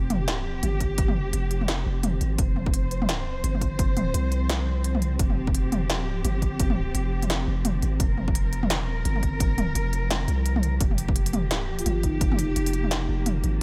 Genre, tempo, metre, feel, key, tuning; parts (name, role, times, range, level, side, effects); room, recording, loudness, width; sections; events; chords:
half-time drum and bass; 171 BPM; 4/4; swing 59% on 16ths, half-time; A4 = 439 Hz
warm chamber cello section; sustained chords; 0.0-13.6 s; F3 to C5; -34 LUFS; equal; sidechain pumping
long sustained 808-style bass; bass; 0.0-13.6 s; F1 to C2; -29 LUFS; equal
industrial drum kit; drums; 0.1-13.5 s; hi-hat, snare drum, toms; -31 LUFS; equal
electronic kick drum; drums; 0.8-12.3 s; -28 LUFS; equal
marimba with soft mallets; melody; 11.8-12.7 s; Eb4 to F4; -33 LUFS; equal; tape echo
light reverb; -25 LUFS; mono
0.0-13.6 A section
0.0 Fsus2